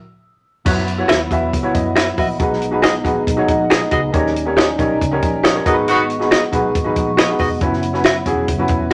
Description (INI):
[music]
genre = uptempo 1960s-style soul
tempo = 138 BPM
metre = 4/4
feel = straight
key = unclear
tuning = A4 = 440 Hz
[part]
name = warm upright piano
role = accompaniment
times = 0.6-8.8 s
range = C#4 to F#5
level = -22 LUFS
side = equal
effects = none
[part]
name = percussive tonewheel organ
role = sustained chords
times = 0.7-8.9 s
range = F#3 to F#4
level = -25 LUFS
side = equal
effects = overdrive, slow rotary speaker
[part]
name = vintage muted fingered electric bass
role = bass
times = 0.7-8.9 s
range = E1 to F#2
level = -28 LUFS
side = equal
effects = none
[part]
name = compact cocktail drum kit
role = drums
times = 0.7-8.8 s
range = crash cymbal, hi-hat, kick drum, snare drum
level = -22 LUFS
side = equal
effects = none
[part]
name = direct-recorded clean electric guitar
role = stabs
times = 1.1-8.9 s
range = F#4 to E5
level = -20 LUFS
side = equal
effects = none
[part]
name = finger snaps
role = percussion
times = 1.1-8.2 s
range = none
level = -25 LUFS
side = equal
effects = none
[part]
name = warm horn section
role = second line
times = 5.9-6.0 s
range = B3 to F#4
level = -18 LUFS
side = equal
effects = none
[sound]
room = moderate studio reverb, RT60 0.6 s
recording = none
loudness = -17 LUFS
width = mono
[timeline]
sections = 0.7-8.9 A section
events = stop 0.0-0.7; band accent 5.9-7.6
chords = 0.0 N.C.; 0.7 F#7sus4; 2.4 B6; 4.1 D#7; 5.7 G#m7; 7.6 F#7sus4